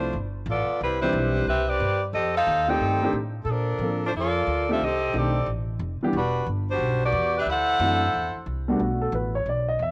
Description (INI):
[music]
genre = jazz, big band swing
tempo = 180 BPM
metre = 4/4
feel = swing 64% on 8ths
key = unclear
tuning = A4 = 440 Hz
[part]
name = clear saxophone section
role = melody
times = 0.0-8.4 s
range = F3 to G5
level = -26 LUFS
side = equal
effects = cassette tape
[part]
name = warm baby grand piano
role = accompaniment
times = 0.0-9.9 s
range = Eb3 to E5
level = -30 LUFS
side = equal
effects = cassette tape
[part]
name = upright bass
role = bass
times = 0.0-9.9 s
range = E1 to Bb2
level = -31 LUFS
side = equal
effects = none
[sound]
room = moderate spring reverb, RT60 2.0 s, small room ambience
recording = home recording on cassette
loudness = -25 LUFS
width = mono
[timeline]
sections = 0.0-8.8 A section; 8.8-9.9 B section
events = grand piano solo 8.8-9.9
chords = 0.1 G9; 0.8 Cmaj7; 2.1 F13; 3.5 Bbmaj7; 4.8 F13; 6.1 Em9; 7.5 D9; 8.8 Asus2